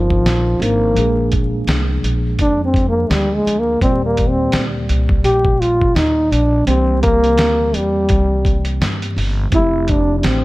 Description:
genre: hip hop, jazz-hop.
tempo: 84 BPM.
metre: 4/4.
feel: swing 57% on 16ths.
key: unclear.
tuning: A4 = 441 Hz.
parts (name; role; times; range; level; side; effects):
breathy trombone; melody; 0.0-10.4 s; F3 to G4; -16 LUFS; equal; none.
mellow tine electric piano; accompaniment; 0.0-10.4 s; Bb2 to D5; -23 LUFS; right 1 dB; medium stereo tremolo.
upright bass; bass; 0.0-10.4 s; F1 to G2; -19 LUFS; equal; none.
dusty soul sampler-style drum kit; drums; 0.1-10.4 s; hi-hat, kick drum, snare drum; -19 LUFS; equal; none.
room: light reverb, small room ambience.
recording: dark, warm production, vinyl crackle.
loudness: -13 LUFS.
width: side -19 dB against mid.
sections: 0.0-10.4 A section.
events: trombone solo 0.0-10.4.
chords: 0.0 Cm11; 1.0 Bb7; 3.8 Ebmaj7; 6.7 C7; 9.5 Fmaj9.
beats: 0.25 | 0.96 1.68 2.39 3.10 | 3.82 4.53 5.25 5.96 | 6.68 7.39 8.10 8.82 | 9.53 10.25.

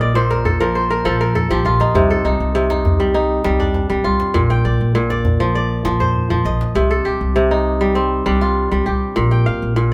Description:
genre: west african traditional, West African string and xylophone music.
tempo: 100 BPM.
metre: 4/4.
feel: straight.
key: C dorian.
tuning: A4 = 440 Hz.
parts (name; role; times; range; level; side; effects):
kora; arpeggios; 0.0-9.9 s; Bb2 to G5; -19 LUFS; equal; none.
upright bass; bass; 0.0-9.9 s; Bb1 to C2; -22 LUFS; equal; none.
djembe; percussion; 0.3-6.7 s; none; -24 LUFS; equal; none.
room: wet small room reverb, RT60 0.6 s.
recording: band playing live in one room.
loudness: -17 LUFS.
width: mono.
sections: 0.0-6.7 A section; 6.7-9.9 B section.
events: kora fill 0.0-1.9; drum fill 6.1-6.7.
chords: 0.0 Bb5; 1.9 Cm; 4.3 Bb; 6.7 Cm; 9.2 Bb.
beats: 0.15 0.75 1.35 | 1.95 2.55 3.15 3.74 | 4.34 4.94 5.54 6.15 | 6.75 7.35 7.96 8.56 | 9.16 9.77.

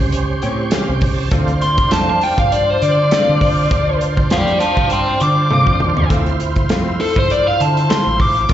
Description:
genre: straight-eighth soul blues.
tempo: 100 BPM.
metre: 4/4.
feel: swing 55% on 16ths.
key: D minor.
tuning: A4 = 441 Hz.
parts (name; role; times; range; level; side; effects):
bright tonewheel organ; accompaniment; 0.0-8.5 s; Bb3 to A5; -22 LUFS; right 4 dB; overdrive, chorus vibrato, slow rotary speaker, plate reverb, slapback echo.
woody fretless electric bass; bass; 0.0-8.5 s; A1 to D3; -19 LUFS; equal; lush chorus.
warm soul drum kit; drums; 0.1-8.5 s; hi-hat, kick drum, snare drum, toms; -18 LUFS; equal; none.
direct-recorded clean electric guitar; stabs; 0.4-8.5 s; E3 to G4; -25 LUFS; left 5 dB; analog chorus, plate reverb, slapback echo.
dark smooth lead guitar; melody; 1.6-8.5 s; A4 to D6; -16 LUFS; left 1 dB; overdrive, plate reverb, slapback echo.
room: light reverb.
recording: live gig heard through the venue's PA, recital hall reverb, nothing above 7.9 kHz.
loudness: -13 LUFS.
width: side -11 dB against mid.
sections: 0.0-6.1 A section; 6.1-8.5 B section.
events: lead electric guitar solo 0.0-6.1; tonewheel organ fill 0.1-1.3; drum fill 5.5-6.1.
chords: 0.0 A7#9; 1.3 Dm7.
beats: 0.13 0.73 | 1.32 1.92 2.52 3.12 | 3.71 4.31 4.91 5.50 | 6.10 6.70 7.30 7.90 | 8.50.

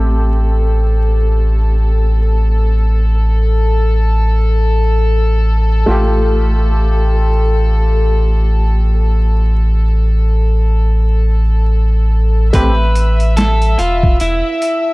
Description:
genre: trip hop.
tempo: free time.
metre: none.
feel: none.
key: A minor.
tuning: A4 = 440 Hz.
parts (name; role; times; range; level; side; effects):
felt-muted upright piano; accompaniment; 0.0-12.7 s; A3 to G4; -22 LUFS; equal; harmonic tremolo, vintage 12-bit sampler grit, tape echo.
dark chamber string section; sustained chords; 0.0-14.9 s; A4 to E5; -22 LUFS; left 4 dB; low-pass filter.
soft dub sub bass; bass; 0.0-14.4 s; E1 to A1; -12 LUFS; equal; none.
electric guitar at the edge of break-up; melody; 12.5-14.9 s; E4 to B4; -17 LUFS; right 1 dB; vintage 12-bit sampler grit.
boom bap sampler-style drum kit; drums; 12.5-14.9 s; hi-hat, kick drum, snare drum; -15 LUFS; equal; overdrive, studio ambience.
room: digital ambience.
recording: vinyl crackle.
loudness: -11 LUFS.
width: side -22 dB against mid.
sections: 0.0-12.5 A section; 12.5-14.9 B section.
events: none.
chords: 0.0 Am7; 5.9 Fadd9/A; 12.5 A5.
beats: free time.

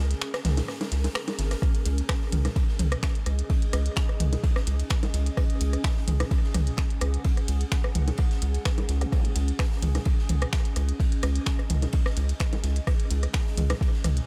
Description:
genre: minimal techno.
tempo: 128 BPM.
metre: 4/4.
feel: swing 53% on 16ths.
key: unclear.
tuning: A4 = 439 Hz.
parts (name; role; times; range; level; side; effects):
rubbery square bass; bass; 0.0-14.2 s; G#1 to C#2; -27 LUFS; equal; sidechain pumping.
granular cloud pad; texture; 0.0-14.3 s; C#4 to F#5; -39 LUFS; equal; built-in reverb, sidechain pumping.
minimal click drum kit; drums; 0.1-14.3 s; finger snaps, hi-hat; -37 LUFS; equal; studio reverb, analog delay.
raw garage drum kit; drums; 0.1-14.2 s; hi-hat, ride cymbal, snare drum; -44 LUFS; equal; sidechain pumping on cymbals, high-pass filter on cymbals, studio reverb, sidechain pumping on hats, high-pass filter on hats, high-pass filter on snare, high-pass filter on room, analog delay.
garage drum kit; percussion; 0.3-14.1 s; bongos, rim click, toms; -34 LUFS; equal; studio reverb, dub echo.
electronic kick drum; drums; 1.6-13.9 s; none; -27 LUFS; equal; studio reverb.
zap; sound effects; 9.0-9.1 s; none; -41 LUFS; equal; none.
room: little or no reverb.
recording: echo-heavy mix.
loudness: -26 LUFS.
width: mono.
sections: 0.0-14.3 A section.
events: break 0.0-1.6.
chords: 0.0 C#5.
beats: 0.22 0.69 1.15 | 1.62 2.09 2.56 3.03 | 3.50 3.97 4.43 4.90 | 5.37 5.84 6.31 6.78 | 7.25 7.72 8.19 8.65 | 9.12 9.59 10.06 10.53 | 11.00 11.47 11.94 12.40 | 12.87 13.34 13.81.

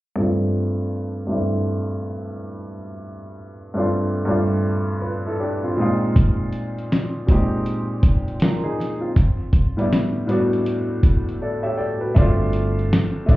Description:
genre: lo-fi hip hop.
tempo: 80 BPM.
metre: 4/4.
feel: swing 61% on 16ths.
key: unclear.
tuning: A4 = 440 Hz.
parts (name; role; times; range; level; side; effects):
warm upright piano; accompaniment; 0.2-13.4 s; G2 to G5; -21 LUFS; equal; cassette tape, low-pass filter, plate reverb.
dusty soul sampler-style drum kit; drums; 6.2-13.4 s; hi-hat, kick drum, snare drum; -17 LUFS; equal; overdrive.
deep dub fingered electric bass; bass; 12.2-13.4 s; G1 to A1; -20 LUFS; equal; none.
room: moderate small room reverb, RT60 0.5 s.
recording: heard muffled through a wall, club reverb, EQ.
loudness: -18 LUFS.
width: side -17 dB against mid.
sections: 0.2-12.2 A section; 12.2-13.4 B section.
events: filter sweep on upright piano 0.2-12.2; upright piano fill 11.0-12.2; break 11.4-12.2.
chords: 0.2 G9sus4; 5.8 Bb9sus4; 9.2 A9sus4; 12.2 G9sus4.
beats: | 0.17 0.92 1.67 2.42 | 3.17 3.92 4.67 5.42 | 6.17 6.92 7.67 8.41 | 9.16 9.91 10.66 11.41 | 12.16 12.91.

